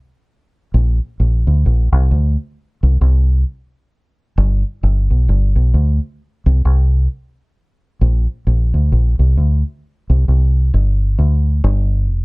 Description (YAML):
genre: reggae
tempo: 66 BPM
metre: 4/4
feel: swing 59% on 16ths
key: unclear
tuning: A4 = 437 Hz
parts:
  - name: deep dub fingered electric bass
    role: solo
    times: 0.7-12.2 s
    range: F1 to D2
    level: -12 LUFS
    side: equal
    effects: none
room: light reverb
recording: dry, close 1970s-style studio recording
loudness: -13 LUFS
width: side -28 dB against mid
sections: 0.0-11.6 A section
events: none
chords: none